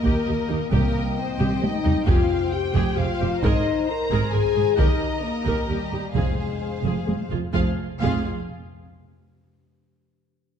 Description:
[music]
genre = cinematic, epic orchestral film score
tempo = 133 BPM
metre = 3/4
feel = straight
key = F minor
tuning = A4 = 440 Hz
[part]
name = warm symphonic violin section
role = melody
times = 0.0-8.3 s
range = G4 to Bb5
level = -34 LUFS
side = left 3 dB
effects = none
[part]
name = warm symphonic violin section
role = second line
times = 0.0-8.3 s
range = Ab4 to Bb5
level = -33 LUFS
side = left 3 dB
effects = none
[part]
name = warm symphonic viola section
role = accompaniment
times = 0.0-8.3 s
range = Eb4 to Bb4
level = -32 LUFS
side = right 1 dB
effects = none
[part]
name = dark French horn section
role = sustained chords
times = 0.0-7.7 s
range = F3 to Bb4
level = -26 LUFS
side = left 5 dB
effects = none
[part]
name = warm symphonic cello section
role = bass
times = 0.0-8.3 s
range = C2 to Ab2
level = -28 LUFS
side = right 3 dB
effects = none
[part]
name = warm symphonic double bass section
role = bass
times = 0.0-8.3 s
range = F1 to Eb2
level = -28 LUFS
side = right 5 dB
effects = none
[part]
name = taiko ensemble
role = drums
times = 0.1-8.9 s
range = none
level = -26 LUFS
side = equal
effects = none
[part]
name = timpani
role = percussion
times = 0.7-2.7, 6.2-8.2 s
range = F2 to C3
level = -31 LUFS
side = equal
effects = none
[sound]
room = moderate scoring stage reverb, RT60 1.6 s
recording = dark, warm production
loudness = -20 LUFS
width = side -8 dB against mid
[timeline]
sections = 0.0-7.5 A section; 7.5-9.0 B section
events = drum fill 1.4-2.1, 6.8-7.5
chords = 0.0 Eb; 0.7 Cm; 2.1 Fmadd9; 3.4 Abadd9; 4.8 Eb; 6.2 Fm

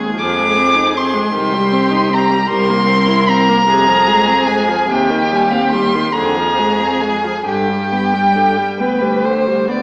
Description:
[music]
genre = classical, slow romantic movement for string quartet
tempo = 44-52 BPM (dotted quarters)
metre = 6/8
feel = rubato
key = C minor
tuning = A4 = 445 Hz
[part]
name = rich violin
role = second line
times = 0.0-9.8 s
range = G4 to D5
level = -22 LUFS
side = equal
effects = none
[part]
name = rich viola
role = accompaniment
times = 0.0-9.8 s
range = C3 to E4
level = -21 LUFS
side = equal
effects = none
[part]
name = rich violin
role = melody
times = 0.2-9.7 s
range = F5 to D6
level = -18 LUFS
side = equal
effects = none
[part]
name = rich cello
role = bass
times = 0.2-9.8 s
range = C2 to G2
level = -22 LUFS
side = equal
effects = none
[sound]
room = wet recital hall reverb, RT60 1.6 s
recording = small speaker sound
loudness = -14 LUFS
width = mono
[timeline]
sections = 0.0-9.8 A section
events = none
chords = 0.2 Fm7; 1.3 Cm; 2.5 C7; 3.7 Fm; 4.9 Cm/Eb; 6.2 Dm7b5/F; 7.5 G

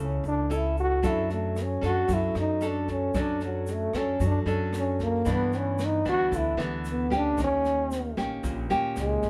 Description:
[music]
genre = bossa nova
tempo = 113 BPM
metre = 4/4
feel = straight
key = unclear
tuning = A4 = 440 Hz
[part]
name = warm trombone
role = melody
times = 0.0-9.3 s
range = F#3 to F#4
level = -29 LUFS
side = equal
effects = none
[part]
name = nylon-string guitar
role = accompaniment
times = 0.0-9.3 s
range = G2 to A4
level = -33 LUFS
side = equal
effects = none
[part]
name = upright bass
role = bass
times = 0.0-9.3 s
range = A#1 to G2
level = -34 LUFS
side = equal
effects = none
[part]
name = tube shaker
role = percussion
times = 0.2-9.3 s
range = none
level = -55 LUFS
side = equal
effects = none
[part]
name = jazz brush drum kit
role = drums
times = 1.0-9.3 s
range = kick drum, rim click, snare drum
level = -39 LUFS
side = equal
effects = none
[sound]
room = moderate studio reverb, RT60 0.7 s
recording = band playing live in one room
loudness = -27 LUFS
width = mono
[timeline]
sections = 0.0-9.3 A section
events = trombone solo 0.0-9.3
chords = 0.0 F#m7; 1.0 Dmaj7/F#; 5.3 G6; 7.4 D#7

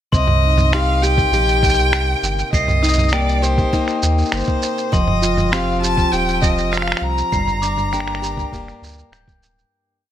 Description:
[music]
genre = folktronica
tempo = 100 BPM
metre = 4/4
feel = straight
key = C minor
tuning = A4 = 441 Hz
[part]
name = rich violin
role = melody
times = 0.1-9.1 s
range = C5 to Bb5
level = -20 LUFS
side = left 1 dB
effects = tape echo
[part]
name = glockenspiel with soft plastic mallets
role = second line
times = 0.1-9.4 s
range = G5 to C7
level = -26 LUFS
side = left 6 dB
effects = tape echo
[part]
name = picked plugged-in steel-string acoustic guitar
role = arpeggios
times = 0.1-10.1 s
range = G2 to G4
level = -23 LUFS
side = equal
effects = tape echo
[part]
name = warm sub bass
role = bass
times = 0.1-9.6 s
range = D1 to Eb2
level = -20 LUFS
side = equal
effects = none
[part]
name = electronic kick drum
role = drums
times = 0.1-9.4 s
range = none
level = -20 LUFS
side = equal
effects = none
[part]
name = lo-fi sampler-style drum kit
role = drums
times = 0.1-9.7 s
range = finger snaps, shaker, toms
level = -23 LUFS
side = right 2 dB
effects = none
[sound]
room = small room ambience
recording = none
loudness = -15 LUFS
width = side -10 dB against mid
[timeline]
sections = 0.1-9.7 groove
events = fade-out 6.5-9.7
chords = 0.1 Cm7; 4.9 Fsus2; 7.3 Gm7

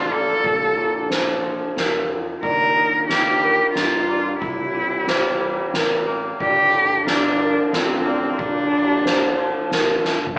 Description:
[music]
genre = post-rock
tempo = 91 BPM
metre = 3/4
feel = straight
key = unclear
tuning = A4 = 438 Hz
[part]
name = clear cello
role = melody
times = 0.0-9.7 s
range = C4 to Bb4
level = -19 LUFS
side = equal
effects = none
[part]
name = dark analog pad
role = sustained chords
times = 0.0-10.4 s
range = Eb3 to A5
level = -31 LUFS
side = equal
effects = none
[part]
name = felt-muted upright piano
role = arpeggios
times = 0.0-10.4 s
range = Bb4 to D5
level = -25 LUFS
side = equal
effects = none
[part]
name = twangy electric guitar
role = arpeggios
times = 0.0-10.4 s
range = G2 to Bb3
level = -29 LUFS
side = equal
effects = none
[part]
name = growling fingered electric bass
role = bass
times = 0.0-10.4 s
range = G1 to G2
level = -33 LUFS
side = equal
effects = overdrive
[part]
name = soft-mallet drum kit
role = drums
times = 0.4-10.4 s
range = kick drum, ride cymbal, snare drum, toms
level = -23 LUFS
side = equal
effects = none
[sound]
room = wet large studio reverb, RT60 1.0 s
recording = band playing live in one room, AM radio sound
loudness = -17 LUFS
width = side -30 dB against mid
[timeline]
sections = 0.0-10.4 A section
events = drum fill 10.0-10.4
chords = 0.4 Bbmaj7; 2.4 Ebmaj7; 4.4 C7; 6.4 Gm7; 8.4 Bbmaj7

